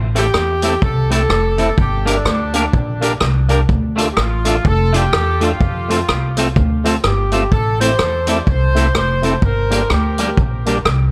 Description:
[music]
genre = ska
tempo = 126 BPM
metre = 4/4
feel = swing 60% on 8ths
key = unclear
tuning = A4 = 440 Hz
[part]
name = upright bass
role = bass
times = 0.0-11.1 s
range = F1 to F2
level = -20 LUFS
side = equal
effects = none
[part]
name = tonewheel organ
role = stabs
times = 0.1-10.8 s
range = A3 to Bb4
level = -27 LUFS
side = equal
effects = overdrive, fast rotary speaker, dub echo
[part]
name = warm horn section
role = melody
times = 0.2-10.4 s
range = D4 to D5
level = -23 LUFS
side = equal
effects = dub echo
[part]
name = semi-hollow electric guitar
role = accompaniment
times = 0.2-10.8 s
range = G3 to Bb4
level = -25 LUFS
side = equal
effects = dub echo
[part]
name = vintage drum kit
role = drums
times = 0.2-11.0 s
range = hi-hat, kick drum, rim click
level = -22 LUFS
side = equal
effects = none
[sound]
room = light reverb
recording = none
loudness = -16 LUFS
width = mono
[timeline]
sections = 0.0-11.1 A section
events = none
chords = 0.0 Am; 1.8 Gm; 3.7 Dm; 5.6 F; 7.5 Am; 9.4 Gm

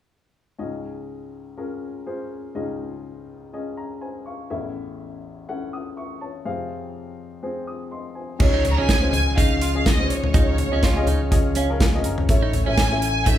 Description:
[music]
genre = piano-driven pop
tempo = 123 BPM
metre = 4/4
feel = swing 56% on 16ths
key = Db major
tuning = A4 = 440 Hz
[part]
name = warm upright piano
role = accompaniment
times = 0.6-13.4 s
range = A1 to Eb6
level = -28 LUFS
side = left 3 dB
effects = none
[part]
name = warm studio violin section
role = melody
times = 8.4-13.4 s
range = Db5 to Bb5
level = -25 LUFS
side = right 1 dB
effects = none
[part]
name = tonewheel organ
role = sustained chords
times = 8.4-13.4 s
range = F3 to F4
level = -34 LUFS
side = right 1 dB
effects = none
[part]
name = picked electric bass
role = bass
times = 8.4-13.4 s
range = Gb1 to Db2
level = -25 LUFS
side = equal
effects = none
[part]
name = natural country drum kit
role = drums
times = 8.4-13.4 s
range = crash cymbal, hi-hat, kick drum, snare drum, toms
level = -20 LUFS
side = equal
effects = none
[part]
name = clean electric guitar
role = riff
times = 8.5-13.4 s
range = Db4 to F4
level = -29 LUFS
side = right 5 dB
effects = none
[sound]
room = moderate large studio reverb, RT60 1.2 s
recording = band playing live in one room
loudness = -20 LUFS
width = side -12 dB against mid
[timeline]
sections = 0.6-8.4 A section; 8.4-13.4 B section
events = upright piano fill 3.5-4.5, 11.3-12.3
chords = 0.6 Dbadd9; 4.5 A; 6.5 Fm; 8.4 Dbadd9; 12.3 A

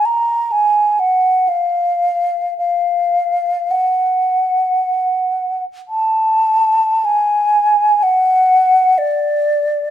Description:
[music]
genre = classical, free, expressive piece for unaccompanied flute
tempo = 43-65 BPM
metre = 4/4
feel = rubato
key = unclear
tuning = A4 = 441 Hz
[part]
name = mellow hollow concert flute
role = solo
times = 0.0-9.9 s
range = D5 to A#5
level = -13 LUFS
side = equal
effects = none
[sound]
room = light reverb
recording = minimal, uncompressed stereo recording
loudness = -13 LUFS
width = side -11 dB against mid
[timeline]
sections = 0.0-7.1 A section; 7.1-9.9 B section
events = none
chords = none

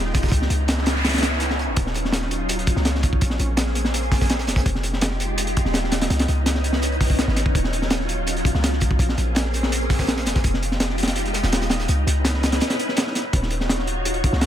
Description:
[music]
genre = drum and bass, jungle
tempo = 166 BPM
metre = 4/4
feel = straight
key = unclear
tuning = A4 = 438 Hz
[part]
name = soft string machine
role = sustained chords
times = 0.0-14.5 s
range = Gb3 to Db5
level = -26 LUFS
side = equal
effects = ensemble chorus, vintage 12-bit sampler grit
[part]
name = warm 808-style bass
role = bass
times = 0.0-14.5 s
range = Eb1 to Db2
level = -24 LUFS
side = equal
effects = none
[part]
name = crunchy breakbeat drum kit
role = drums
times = 0.1-14.5 s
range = hi-hat, kick drum, snare drum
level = -22 LUFS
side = equal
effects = none
[part]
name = crunchy breakbeat drum kit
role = drums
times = 0.1-13.2 s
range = hi-hat, snare drum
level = -33 LUFS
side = right 3 dB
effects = high-pass filter on hats, high-pass filter on snare, high-pass filter on room
[part]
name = noise sweep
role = sound effects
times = 0.6-1.8 s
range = none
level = -28 LUFS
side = equal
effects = none
[sound]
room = small room ambience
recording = none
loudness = -19 LUFS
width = side -11 dB against mid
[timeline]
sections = 0.0-13.3 A section; 13.3-14.5 A section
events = drop 0.0-13.3, 13.3-14.5; noise sweep 0.6-1.8; break 12.6-13.3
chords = 0.3 Dbm9; 1.8 Ebm9; 3.2 Bbm9; 4.7 Fm9; 6.1 Dbm9; 7.5 Ebm9; 9.0 Bbm9; 10.4 Fm9; 11.9 Dbm9; 13.3 Ebm9

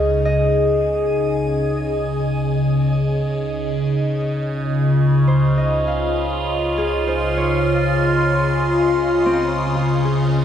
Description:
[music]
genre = ambient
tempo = 60 BPM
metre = 4/4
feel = straight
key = Db major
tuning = A4 = 440 Hz
[part]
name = evolving wavetable pad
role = sustained chords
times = 0.0-10.4 s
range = Db3 to C6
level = -17 LUFS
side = left 1 dB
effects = phaser, built-in reverb, shimmer reverb
[part]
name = Celtic harp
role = arpeggios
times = 0.0-10.4 s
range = C4 to F5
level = -26 LUFS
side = right 1 dB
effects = diffuse ambient delay, shimmer reverb
[part]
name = deep rumbling drone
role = bass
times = 0.0-10.4 s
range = Db2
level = -29 LUFS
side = right 1 dB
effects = built-in reverb
[sound]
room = wet concert hall reverb, RT60 1.9 s, small room reverb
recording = none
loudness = -16 LUFS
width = side -9 dB against mid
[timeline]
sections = 0.0-10.4 A section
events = none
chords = 0.0 Absus4/Db; 4.3 Dbmaj7

